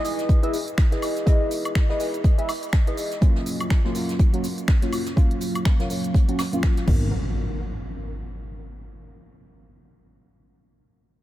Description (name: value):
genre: deep house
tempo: 123 BPM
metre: 4/4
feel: swing 58% on 16ths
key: unclear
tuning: A4 = 435 Hz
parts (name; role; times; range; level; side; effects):
- chorused polysynth; stabs; 0.0-7.1 s; F#3 to E5; -27 LUFS; equal; sidechain pumping, diffuse ambient delay
- deep house drum kit; drums; 0.0-7.0 s; cabasa, crash cymbal, finger snaps, hi-hat, woodblock; -33 LUFS; equal; none
- jazz brush drum kit; drums; 0.0-6.9 s; hi-hat, snare drum; -42 LUFS; right 2 dB; sidechain pumping on hats, high-pass filter on hats, high-pass filter on snare, high-pass filter on room
- electronic kick drum; drums; 0.3-7.0 s; none; -18 LUFS; equal; overdrive
- fingered electric bass; bass; 6.9-7.1 s; G#1; -24 LUFS; equal; tube saturation, sidechain pumping
- impact; sound effects; 6.9-8.8 s; none; -30 LUFS; equal; none
room: light reverb, small room ambience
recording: none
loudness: -20 LUFS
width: side -14 dB against mid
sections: 0.0-7.1 A section; 7.1-9.1 B section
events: filter sweep on analog polysynth 0.0-7.1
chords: 0.0 Emaj7; 3.2 F#maj7; 6.9 G#m7; 7.1 N.C.